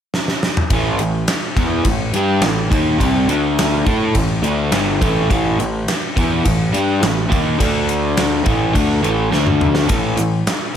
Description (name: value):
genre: classic rock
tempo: 104 BPM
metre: 4/4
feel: straight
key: unclear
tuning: A4 = 440 Hz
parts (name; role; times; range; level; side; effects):
- gated 80s drum kit; drums; 0.1-10.6 s; kick drum, ride cymbal, snare drum, toms; -19 LUFS; equal; none
- crunchy overdriven guitar; riff; 0.7-10.4 s; G2 to A4; -18 LUFS; left 1 dB; none
- fuzz picked electric bass; bass; 0.7-10.5 s; G1 to A2; -21 LUFS; equal; overdrive
- tube shaker; percussion; 9.9-10.6 s; none; -33 LUFS; right 6 dB; none
room: light reverb, small room ambience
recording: none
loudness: -14 LUFS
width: side -9 dB against mid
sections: 0.7-10.8 A section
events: drum fill 0.1-0.7, 9.3-9.9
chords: 0.0 N.C.; 0.7 A5; 3.3 D5; 3.9 A5; 7.6 D5; 8.5 A5; 9.3 D5; 9.9 A5